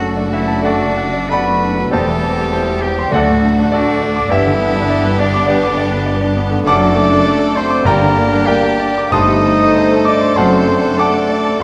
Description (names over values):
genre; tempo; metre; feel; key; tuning
classical; 99 BPM; 4/4; uneven beats, rubato; G major; A4 = 438 Hz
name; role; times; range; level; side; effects
clear chamber violin section; melody; 0.0-11.6 s; F#4 to A4; -29 LUFS; equal; none
clear concert grand piano; melody; 0.0-11.6 s; D2 to Eb6; -18 LUFS; equal; none
clear oboe; second line; 0.0-11.6 s; D4 to Eb5; -24 LUFS; equal; none
dark chamber violin section; second line; 0.0-11.6 s; G3 to D4; -28 LUFS; equal; none
mellow large flute ensemble; second line; 0.0-11.6 s; D5 to Eb6; -26 LUFS; equal; none
rich chamber viola section; accompaniment; 0.0-11.6 s; G3 to B3; -26 LUFS; equal; none
warm French horn section; sustained chords; 0.0-11.6 s; D3 to Eb4; -24 LUFS; equal; none
rich symphonic cello section; bass; 0.0-11.6 s; D2 to G2; -25 LUFS; equal; none
rich symphonic double bass section; bass; 0.0-11.6 s; E1 to D2; -26 LUFS; equal; none
warm clarinet; second line; 0.6-11.6 s; C5 to D5; -25 LUFS; equal; none
mellow bassoon; accompaniment; 0.6-11.6 s; G3 to B3; -26 LUFS; equal; none
timpani; percussion; 3.1-4.0, 7.8-10.0 s; G2 to D3; -26 LUFS; equal; none
room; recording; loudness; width
wet recital hall reverb, RT60 1.5 s; none; -14 LUFS; mono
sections
0.0-11.6 A section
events
none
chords
0.0 D/F#; 1.9 C/E; 3.1 D; 4.3 G; 6.7 D/F#; 7.8 Gm; 9.1 Am7b5/G; 10.4 D7/F#